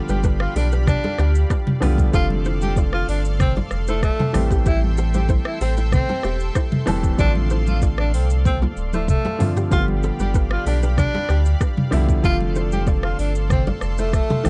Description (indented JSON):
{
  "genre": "afrobeats",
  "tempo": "95 BPM",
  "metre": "4/4",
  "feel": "straight",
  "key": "D dorian",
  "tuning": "A4 = 439 Hz",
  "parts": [
    { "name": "warm grand piano", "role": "accompaniment", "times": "0.0-14.5 s", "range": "D3 to A4", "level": "-30 LUFS", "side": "equal", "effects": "none" },
    { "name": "lush unison pad", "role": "sustained chords", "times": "0.0-14.5 s", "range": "G4 to C6", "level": "-36 LUFS", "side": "equal", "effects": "chorus, sidechain pumping" },
    { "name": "kora", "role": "riff", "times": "0.0-14.4 s", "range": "B3 to D5", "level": "-34 LUFS", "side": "equal", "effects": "digital delay" },
    { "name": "breathy tenor saxophone", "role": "melody", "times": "0.1-14.5 s", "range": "A3 to G4", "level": "-29 LUFS", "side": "equal", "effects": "digital delay" },
    { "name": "sub bass with octave", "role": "bass", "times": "0.1-14.5 s", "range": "D1 to D2", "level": "-23 LUFS", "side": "equal", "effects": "none" },
    { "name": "afro-pop drum kit", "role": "drums", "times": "0.1-14.5 s", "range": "hi-hat, kick drum, rim click, shaker, toms", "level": "-23 LUFS", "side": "equal", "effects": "vintage 12-bit sampler grit" },
    { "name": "congas", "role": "percussion", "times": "0.1-14.5 s", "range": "none", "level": "-31 LUFS", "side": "equal", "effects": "none" }
  ],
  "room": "light reverb",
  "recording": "dark, warm production, nothing above 10.8 kHz",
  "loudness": "-20 LUFS",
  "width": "mono",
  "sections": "0.0-14.5 A section",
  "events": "drum fill 8.4-9.7",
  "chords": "0.0 G7; 2.1 Dm7/F; 4.3 Am7; 7.2 Dm7/A; 9.7 G7; 12.2 Dm7/F"
}